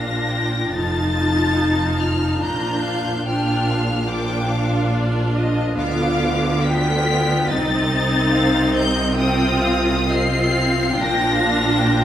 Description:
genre	classical, slow romantic movement for string orchestra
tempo	64-73 BPM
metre	4/4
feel	rubato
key	unclear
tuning	A4 = 440 Hz
part	rich studio violin section	melody	0.0-12.0 s	D6 to C7	-24 LUFS	left 3 dB	none
part	clear chamber violin section	second line	0.0-12.0 s	D5 to Bb5	-27 LUFS	left 1 dB	none
part	clear symphonic viola section	accompaniment	0.0-12.0 s	B3 to F4	-21 LUFS	equal	none
part	clear studio double bass section	bass	0.0-12.0 s	F1 to D2	-25 LUFS	right 1 dB	none
part	clear symphonic cello section	bass	0.0-12.0 s	F2 to D3	-24 LUFS	right 1 dB	none
room	wet recital hall reverb, RT60 1.7 s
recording	heard from further back in the room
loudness	-17 LUFS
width	side -11 dB against mid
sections	0.0-12.0 A section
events	none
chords	0.0 Bb; 0.7 F7; 2.4 Bb; 5.8 G7/D; 7.5 Cm; 9.2 F5/C; 10.9 Bb

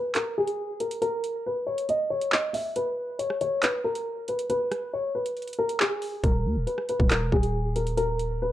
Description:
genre	hip hop, drill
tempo	138 BPM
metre	4/4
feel	half-time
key	unclear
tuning	A4 = 435 Hz
part	dark concert grand piano	melody	0.0-8.5 s	Ab4 to Fb5	-27 LUFS	left 1 dB	low-pass filter
part	drill drum kit	drums	0.1-8.3 s	handclaps, hi-hat, kick drum, rim click	-26 LUFS	equal	vintage 12-bit sampler grit
part	growling 808-style bass	bass	6.2-8.5 s	Eb1 to Eb2	-27 LUFS	equal	none
room	light reverb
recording	none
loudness	-25 LUFS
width	side -13 dB against mid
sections	0.0-8.5 A section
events	break 0.0-6.2; filter sweep on grand piano 0.0-8.5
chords	0.0 N.C.; 6.2 Eb5

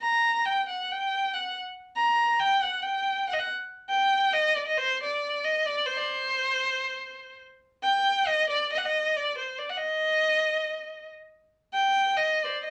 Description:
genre	balkan folk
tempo	free time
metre	none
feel	none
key	unclear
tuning	A4 = 440 Hz
part	dark violin	solo	0.0-12.7 s	C5 to Bb5	-26 LUFS	equal	none
room	wet studio ambience, RT60 0.5 s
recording	none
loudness	-26 LUFS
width	mono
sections	0.0-7.8 A section; 7.8-12.7 A section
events	none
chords	none

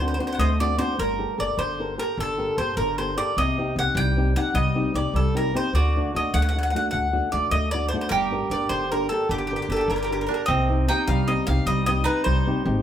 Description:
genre	italian folk, Italian serenade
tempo	101 BPM (dotted quarters)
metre	6/8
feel	straight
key	G harmonic minor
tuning	A4 = 439 Hz
part	bowl-back mandolin	melody	0.0-12.8 s	G4 to G5	-25 LUFS	equal	none
part	nylon-string guitar	accompaniment	0.0-12.8 s	C3 to Bb4	-27 LUFS	left 1 dB	none
part	upright bass	bass	0.0-12.8 s	G1 to D2	-25 LUFS	equal	none
part	bowl-back mandolin	second line	5.8-12.8 s	C4 to G4	-29 LUFS	right 4 dB	none
room	moderate large studio reverb, RT60 1.0 s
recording	band playing live in one room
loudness	-21 LUFS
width	side -10 dB against mid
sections	1.0-10.5 A section; 10.5-12.8 B section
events	none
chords	0.0 D7; 1.0 Gmadd9; 3.4 Cm; 5.7 D; 8.1 Gm; 10.5 Cm

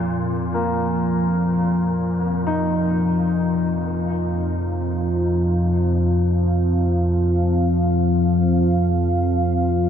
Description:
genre	dark ambient drone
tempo	free time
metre	none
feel	none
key	unclear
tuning	A4 = 440 Hz
part	dark analog pad	sustained chords	0.4-9.9 s	C4 to F5	-28 LUFS	right 1 dB	chorus
part	warm concert grand piano	arpeggios	0.0-9.9 s	Bb2 to Eb4	-27 LUFS	left 2 dB	diffuse ambient delay
part	analog drone	drone	0.0-9.9 s	F2 to F3	-19 LUFS	equal	chorus
room	moderate huge ambient reverb, RT60 8.3 s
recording	cassette tape, nothing above 10.4 kHz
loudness	-18 LUFS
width	side -8 dB against mid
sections	0.0-9.9 A section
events	fade-in on analog synth pad 0.0-9.9; filter sweep on synth drone 0.0-9.9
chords	0.0 F5

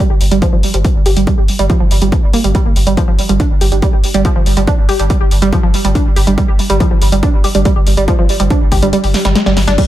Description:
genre	driving peak-time techno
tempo	141 BPM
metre	4/4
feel	straight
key	unclear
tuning	A4 = 438 Hz
part	analog pluck	riff	0.0-9.8 s	F3 to G4	-15 LUFS	right 2 dB	chorus, tube saturation, sidechain pumping, analog delay
part	saturated sub bass	bass	0.1-9.8 s	G1	-14 LUFS	equal	tube saturation, sidechain pumping, low-pass filter
part	punchy analog drum machine	drums	0.2-9.9 s	crash cymbal, hi-hat, snare drum	-20 LUFS	left 1 dB	none
part	electronic kick drum	drums	0.4-9.9 s	none	-14 LUFS	equal	none
part	swell	sound effects	9.1-9.8 s	none	-22 LUFS	left 2 dB	none
room	little or no reverb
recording	echo-heavy mix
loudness	-10 LUFS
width	side -13 dB against mid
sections	0.0-9.9 A section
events	filter sweep on synth arpeggio sound 0.0-9.9; kick drops out 8.9-9.8; swell 9.1-9.8; drum fill 9.1-9.8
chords	none

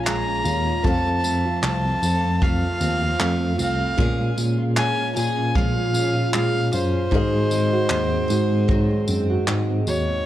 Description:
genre	acoustic pop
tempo	76 BPM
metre	4/4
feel	swing 55% on 16ths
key	Bb minor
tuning	A4 = 441 Hz
part	warm violin	melody	0.0-10.3 s	C5 to Bb5	-25 LUFS	equal	plate reverb, tape echo
part	felt-muted upright piano	accompaniment	0.0-10.3 s	C4 to F5	-33 LUFS	left 4 dB	plate reverb
part	picked steel-string acoustic guitar	accompaniment	0.0-10.3 s	F2 to A4	-26 LUFS	right 1 dB	double-tracked left and right
part	nylon-string guitar	arpeggios	0.0-10.3 s	Eb3 to Gb4	-30 LUFS	right 4 dB	none
part	tine electric piano	bass	0.0-10.2 s	Bb1 to Bb2	-23 LUFS	equal	medium tremolo
part	vintage brush drum kit	drums	0.1-10.1 s	handclaps, kick drum, tambourine	-25 LUFS	equal	none
room	moderate studio reverb, RT60 0.8 s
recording	worn, warbling old tape, cassette tape, warbly pitch drift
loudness	-19 LUFS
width	side -13 dB against mid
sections	0.0-10.3 A section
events	none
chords	0.0 Bbm7; 0.8 F; 4.0 Bbm7; 7.1 Ab7

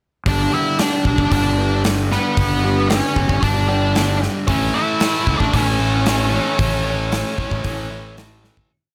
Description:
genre	quiet-loud alternative rock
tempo	114 BPM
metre	4/4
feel	straight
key	unclear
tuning	A4 = 435 Hz
part	octave-fuzz lead guitar	melody	0.3-8.1 s	B3 to E5	-23 LUFS	equal	distortion
part	fuzz guitar	riff	0.3-8.7 s	G2 to A3	-27 LUFS	equal	distortion
part	fuzz fingered electric bass	bass	0.3-8.5 s	G1 to C#2	-24 LUFS	equal	overdrive
part	big rock drum kit	drums	0.3-8.7 s	hi-hat, kick drum, snare drum	-24 LUFS	equal	none
part	semi-hollow electric guitar	arpeggios	0.5-4.3 s	G3 to G4	-30 LUFS	equal	phaser, digital delay
part	tight distorted guitar	riff	4.5-8.7 s	A2 to A3	-27 LUFS	equal	distortion
room	light reverb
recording	none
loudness	-18 LUFS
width	mono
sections	0.3-8.7 pre-chorus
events	fade-out 6.6-8.7; drum fill 8.4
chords	0.3 G; 4.5 A

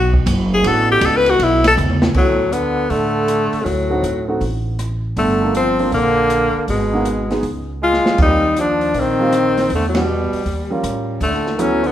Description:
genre	jazz, small-group swing and bop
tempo	159 BPM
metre	4/4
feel	swing 66% on 8ths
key	unclear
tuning	A4 = 439 Hz
part	clear tenor saxophone	melody	0.0-11.9 s	Eb3 to B4	-16 LUFS	left 2 dB	none
part	upright bass	bass	0.0-11.9 s	F#1 to A2	-21 LUFS	equal	none
part	open jazz drum kit	drums	0.1-11.9 s	crash cymbal, hi-hat, kick drum, ride cymbal, rim click, snare drum, toms	-22 LUFS	equal	none
part	warm grand piano	accompaniment	0.7-11.8 s	F#3 to C5	-23 LUFS	right 2 dB	none
part	brilliant trombone	second line	2.2-11.9 s	F#2 to G#3	-22 LUFS	right 4 dB	none
room	moderate recital hall reverb, RT60 1.3 s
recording	recorded in a church or concert hall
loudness	-14 LUFS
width	side -11 dB against mid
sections	0.0-2.1 A section; 2.1-11.9 B section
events	tenor saxophone solo 0.0-2.1; drum fill 1.8-2.1, 7.8-8.2; band accent 9.9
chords	0.0 D6; 3.7 D7b9; 5.2 Gm9; 6.7 G#m7; 7.4 C#; 8.2 Eb69; 9.7 Em7; 10.5 Eb9; 11.2 D6

